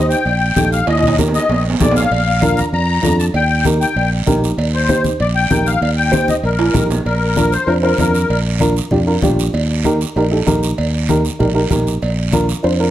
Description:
latin, cumbia; 194 BPM; 4/4; straight; Bb major; A4 = 439 Hz
musette accordion; second line; 0.0-8.4 s; Bb4 to Bb5; -18 LUFS; left 4 dB
dark upright piano; accompaniment; 0.0-12.9 s; D4 to C5; -18 LUFS; right 1 dB
fingered electric bass; bass; 0.0-12.9 s; Bb1 to F2; -17 LUFS; equal
guiro; percussion; 0.1-12.9 s; -28 LUFS; right 8 dB
cowbell and timbales; percussion; 0.3-12.8 s; -24 LUFS; right 4 dB
congas; percussion; 0.6-12.8 s; -20 LUFS; left 2 dB
light reverb; -13 LUFS; side -13 dB against mid
0.0-7.1 A section; 7.1-12.9 B section
accordion solo 0.0-7.1; drum fill 0.9-2.1, 6.6-7.1
0.0 Eb; 2.1 Bb; 3.3 Eb; 7.1 Bb; 9.5 Eb; 12.0 Bb

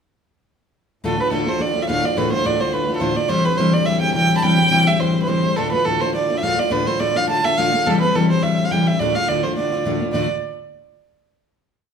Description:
celtic folk, Celtic reel; 211 BPM; 4/4; swing 54% on 8ths; D dorian; A4 = 445 Hz
fingerpicked steel-string acoustic guitar; accompaniment; 1.0-10.3 s; D2 to G4; -20 LUFS; left 2 dB
pedal harmonium; drone; 1.0-10.2 s; D2 to A2; -30 LUFS; equal
warm violin; melody; 1.1-10.3 s; A4 to B5; -19 LUFS; right 3 dB
wet large studio reverb, RT60 1.0 s; band playing live in one room; -16 LUFS; side -6 dB against mid
1.0-10.1 A section; 10.1-11.3 final chord
1.0 Dm; 3.3 C; 5.6 Dm; 7.9 C; 9.0 Dm

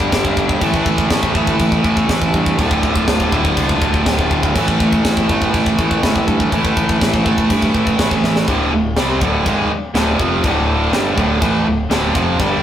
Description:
heavy metal; 122 BPM; 4/4; straight; D minor; A4 = 440 Hz
distorted electric guitar; riff; 0.0-12.6 s; D2 to C4; -18 LUFS; right 3 dB; overdrive
heavy high-gain guitar; riff; 0.0-12.6 s; D2 to A4; -24 LUFS; left 7 dB; distortion
raw garage guitar; riff; 0.0-12.6 s; D2 to C4; -21 LUFS; left 1 dB; overdrive
growling fingered electric bass; bass; 0.0-12.6 s; D1 to G2; -22 LUFS; left 1 dB; overdrive
tight metal drum kit; drums; 0.0-12.5 s; china cymbal, crash cymbal, kick drum, snare drum; -19 LUFS; equal
moderate studio reverb, RT60 0.5 s; rough rehearsal-room recording, warm saturation; -13 LUFS; side -10 dB against mid
0.0-8.5 A section; 8.5-12.6 B section
drum fill 8.2
0.0 G5; 0.6 A5; 2.6 Dm; 4.6 A5; 8.5 Dm

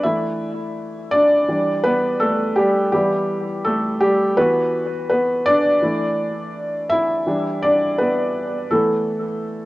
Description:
hip hop; 83 BPM; 4/4; swing 65% on 16ths; E minor; A4 = 440 Hz
felt-muted upright piano; solo; 0.0-9.7 s; E3 to E5; -17 LUFS; equal; cassette tape, analog delay
moderate small room reverb, RT60 0.6 s; rough home demo mix, cassette tape; -17 LUFS; side -19 dB against mid
0.0-9.7 A section
felt piano solo 0.0-9.7
0.0 E7sus4; 1.5 Em7; 2.9 Emadd11; 4.4 Bmadd11/E; 5.8 E7sus4; 7.3 Em7; 8.7 Esus4

